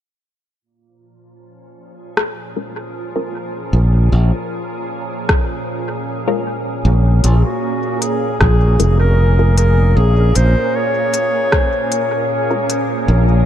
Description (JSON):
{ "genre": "ambient dub", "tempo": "77 BPM", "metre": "4/4", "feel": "straight", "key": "Bb minor", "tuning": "A4 = 440 Hz", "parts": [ { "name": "soft additive organ-like pad", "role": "sustained chords", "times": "1.7-13.5 s", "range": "Bb2 to Bb4", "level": "-22 LUFS", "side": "right 1 dB", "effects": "ensemble chorus, built-in reverb" }, { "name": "organic electronic drum kit", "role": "drums", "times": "2.2-12.9 s", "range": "hi-hat, rim click", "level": "-20 LUFS", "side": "left 1 dB", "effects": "dub echo" }, { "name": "filtered dub chord stab", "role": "stabs", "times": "2.6-12.7 s", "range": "Ab3 to Bb4", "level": "-24 LUFS", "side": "left 3 dB", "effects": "phaser, dub echo" }, { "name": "modern bright fingered electric bass", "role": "bass", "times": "3.7-13.4 s", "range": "F1 to Bb1", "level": "-11 LUFS", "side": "equal", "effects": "none" }, { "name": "electronic kick drum", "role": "drums", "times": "5.3-11.7 s", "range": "none", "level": "-16 LUFS", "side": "equal", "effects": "none" }, { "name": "warm clarinet", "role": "melody", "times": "7.2-12.7 s", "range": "F4 to Db5", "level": "-19 LUFS", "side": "left 1 dB", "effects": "dub echo" } ], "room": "light reverb", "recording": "none", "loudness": "-13 LUFS", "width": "side -10 dB against mid", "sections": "0.6-6.9 A section; 6.9-13.5 B section", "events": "fade-in on ambient pad 0.6-6.9", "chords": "0.6 Bbm7" }